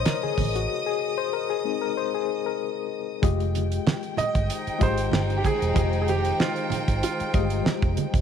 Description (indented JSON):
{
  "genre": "lush 1970s-style soul",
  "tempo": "95 BPM",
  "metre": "4/4",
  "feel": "swing 54% on 16ths",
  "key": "F minor from 3.2 s",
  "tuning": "A4 = 440 Hz",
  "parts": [
    { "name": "warm chamber violin section", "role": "second line", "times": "0.0-8.2 s", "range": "Eb4 to Eb6", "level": "-32 LUFS", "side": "equal", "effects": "none" },
    { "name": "barky reed electric piano", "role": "accompaniment", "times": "0.0-8.2 s", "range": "C3 to Eb5", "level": "-28 LUFS", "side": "left 13 dB", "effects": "overdrive, fast tremolo" },
    { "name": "vintage muted fingered electric bass", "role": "bass", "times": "0.0-8.2 s", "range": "E1 to A1", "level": "-26 LUFS", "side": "right 1 dB", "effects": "none" },
    { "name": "damped 70s drum kit", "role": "drums", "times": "0.1-8.2 s", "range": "hi-hat, kick drum, snare drum", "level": "-25 LUFS", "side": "right 1 dB", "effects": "none" },
    { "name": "congas", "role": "percussion", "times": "0.1-8.1 s", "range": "none", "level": "-33 LUFS", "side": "right 11 dB", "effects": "none" },
    { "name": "warm symphonic string section", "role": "sustained chords", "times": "3.2-8.2 s", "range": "Eb3 to G5", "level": "-36 LUFS", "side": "left 1 dB", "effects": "none" },
    { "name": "clear baby grand piano", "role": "melody", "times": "4.2-7.6 s", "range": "F4 to Eb5", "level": "-28 LUFS", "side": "right 4 dB", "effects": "none" }
  ],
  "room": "light reverb, small room ambience",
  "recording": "1960s-style stereo with parts hard left and right",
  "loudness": "-22 LUFS",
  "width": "side -8 dB against mid",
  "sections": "0.0-3.2 A section; 3.2-8.2 B section",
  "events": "reed electric piano solo 0.0-3.2; break 0.7-3.2",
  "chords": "0.0 Bb7sus4; 3.2 Fm9"
}